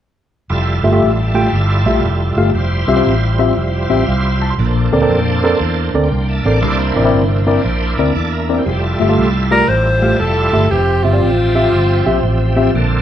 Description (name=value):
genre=gospel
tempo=118 BPM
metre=4/4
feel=swing 65% on 8ths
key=F major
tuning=A4 = 440 Hz
part: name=bright tonewheel organ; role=sustained chords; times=0.5-13.0 s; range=D3 to C6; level=-20 LUFS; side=right 3 dB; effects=slow rotary speaker, chorus vibrato
part: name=fingered electric bass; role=bass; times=0.5-13.0 s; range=F1 to F2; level=-16 LUFS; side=equal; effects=none
part: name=tine electric piano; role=accompaniment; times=0.8-13.0 s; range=Bb2 to C6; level=-16 LUFS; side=left 1 dB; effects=slow stereo tremolo
part: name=warm alto saxophone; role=melody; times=9.5-12.6 s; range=F4 to C5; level=-16 LUFS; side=left 1 dB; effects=none
room=moderate large studio reverb, RT60 0.8 s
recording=band playing live in one room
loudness=-12 LUFS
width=side -10 dB against mid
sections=0.5-8.7 A section; 8.7-13.0 B section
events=none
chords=0.5 Fmaj9; 4.6 Bbmaj9; 6.6 C9; 8.7 Fmaj9; 10.7 Dm11/F (rootless)